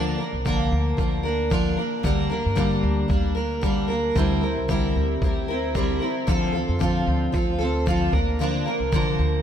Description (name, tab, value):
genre	acoustic pop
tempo	113 BPM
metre	4/4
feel	swing 55% on 16ths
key	unclear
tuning	A4 = 440 Hz
part	picked steel-string acoustic guitar	accompaniment	0.0-9.4 s	D3 to Bb4	-22 LUFS	equal	double-tracked left and right
part	upright bass	bass	0.0-9.4 s	C2 to G2	-26 LUFS	equal	none
part	electronic kick drum	drums	0.5-9.1 s	none	-26 LUFS	equal	none
room	moderate lush hall reverb, RT60 2.2 s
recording	dreamy mix soaked in reverb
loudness	-20 LUFS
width	side -9 dB against mid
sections	0.0-9.4 A section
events	none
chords	0.0 Bb; 2.0 Gm/D; 4.2 C7; 6.3 Dm7; 8.1 Bb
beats	0.45 0.98 1.51 | 2.04 2.57 3.10 3.63 | 4.16 4.69 5.22 5.75 | 6.28 6.81 7.34 7.87 | 8.39 8.92